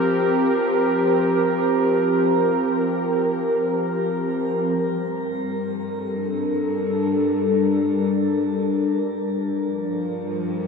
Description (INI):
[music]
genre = ambient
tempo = free time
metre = none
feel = none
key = G minor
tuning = A4 = 440 Hz
[part]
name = warbly tape-like pad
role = sustained chords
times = 0.0-10.7 s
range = F3 to Bb4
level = -19 LUFS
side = equal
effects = chorus, built-in reverb, shimmer reverb
[part]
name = clear studio cello section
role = bass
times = 4.8-10.7 s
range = G2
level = -37 LUFS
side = equal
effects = none
[sound]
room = wet huge ambient reverb, RT60 8.4 s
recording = nothing above 8.0 kHz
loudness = -19 LUFS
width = side -5 dB against mid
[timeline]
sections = 0.0-4.8 A section; 4.8-10.7 B section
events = fade-in on cello section 4.8-10.7; filter sweep on ambient pad 4.8-10.7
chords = 0.0 Fsus24; 4.8 Gmadd9; 9.5 Fsus24/G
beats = free time